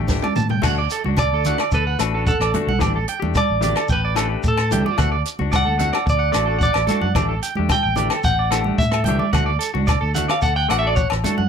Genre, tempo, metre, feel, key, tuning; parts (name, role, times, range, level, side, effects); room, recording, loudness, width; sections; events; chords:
highlife guitar band; 110 BPM; 4/4; straight; D major; A4 = 440 Hz
clean electric guitar; melody; 0.0-11.1 s; A4 to G5; -22 LUFS; equal; plate reverb
semi-hollow electric guitar; accompaniment; 0.0-11.4 s; E3 to G4; -27 LUFS; left 12 dB; plate reverb
fingered electric bass; bass; 0.0-11.5 s; A1 to A2; -23 LUFS; equal
compact cocktail drum kit; drums; 0.1-11.4 s; crash cymbal, hi-hat, kick drum, rim click, snare drum, toms; -24 LUFS; equal
congas; percussion; 0.1-11.5 s; -26 LUFS; right 5 dB
shekere; percussion; 0.1-11.4 s; -28 LUFS; right 2 dB
electric guitar at the edge of break-up; arpeggios; 0.2-11.5 s; A4 to A5; -25 LUFS; right 8 dB; slapback echo, plate reverb
agogo bells; percussion; 0.2-11.2 s; -29 LUFS; left 14 dB
light reverb; -17 LUFS; side -7 dB against mid
0.6-11.5 A section
drum fill 0.1-0.6; clean electric guitar solo 0.6-11.5
0.0 A7sus4; 0.6 D; 2.8 A7sus4; 5.0 D; 7.2 A7sus4; 9.3 D